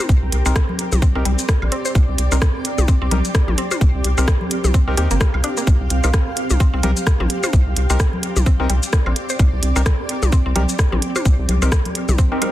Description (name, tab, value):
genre	minimal techno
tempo	129 BPM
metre	4/4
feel	swing 58% on 16ths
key	C minor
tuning	A4 = 441 Hz
part	mallet-like synth pluck	riff	0.0-12.5 s	G3 to C5	-28 LUFS	left 1 dB	chorus, phaser, sidechain pumping, tape echo
part	granular cloud pad	texture	0.0-12.5 s	C4 to F5	-26 LUFS	right 2 dB	built-in reverb, sidechain pumping
part	rubbery square bass	bass	0.1-12.2 s	G1 to Eb2	-18 LUFS	equal	sidechain pumping
part	electronic kick drum	drums	0.1-12.3 s	none	-16 LUFS	equal	none
part	garage drum kit	drums	0.1-12.5 s	hi-hat, rim click, shaker	-24 LUFS	equal	soft clipping on snare
part	percussive organ stab	stabs	0.5-12.5 s	C4 to Bb4	-27 LUFS	left 2 dB	chorus, digital delay
part	electronic woodblock, congas and toms	percussion	0.5-12.5 s	none	-25 LUFS	left 2 dB	overdrive, digital delay
part	swell	sound effects	12.3-12.5 s	none	-23 LUFS	right 3 dB	none
room	light reverb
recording	dense, heavily limited modern master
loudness	-15 LUFS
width	side -14 dB against mid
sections	0.0-12.5 A section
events	swell 12.3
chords	0.0 Cm7